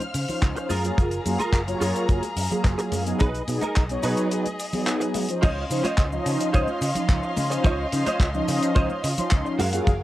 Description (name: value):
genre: nu-disco, nu disco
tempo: 108 BPM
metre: 4/4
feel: straight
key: Db major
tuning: A4 = 442 Hz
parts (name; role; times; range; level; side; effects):
- rich chamber string section; sustained chords; 0.0-10.0 s; Gb3 to F6; -32 LUFS; left 1 dB; sidechain pumping, cassette tape
- damped 70s drum kit; drums; 0.0-10.0 s; cabasa, crash cymbal, handclaps, hi-hat; -32 LUFS; left 1 dB; studio reverb
- congas and cabasa; percussion; 0.0-10.0 s; none; -35 LUFS; left 1 dB; none
- vintage muted picked electric bass; bass; 0.1-10.0 s; Gb1 to Db3; -29 LUFS; equal; transformer saturation, sidechain pumping
- mellow synth brass; accompaniment; 0.3-9.9 s; F3 to C6; -27 LUFS; equal; chorus, cassette tape, analog delay
- direct-recorded clean electric guitar; riff; 0.4-10.0 s; Eb4 to F5; -28 LUFS; right 2 dB; ensemble chorus, cassette tape, analog delay
- kick drum; drums; 0.4-10.0 s; none; -20 LUFS; equal; studio reverb
room: light reverb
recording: home recording on cassette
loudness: -21 LUFS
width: side -15 dB against mid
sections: 0.0-5.4 A section; 5.4-10.0 B section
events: drop 5.4-10.0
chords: 0.0 Dbmaj9; 0.7 Gbmaj9; 3.2 Cb6; 5.4 Dbmaj9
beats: 0.43 | 0.98 1.54 2.09 2.65 | 3.21 3.76 4.32 4.87 | 5.43 5.98 6.54 7.09 | 7.65 8.21 8.76 9.32 | 9.87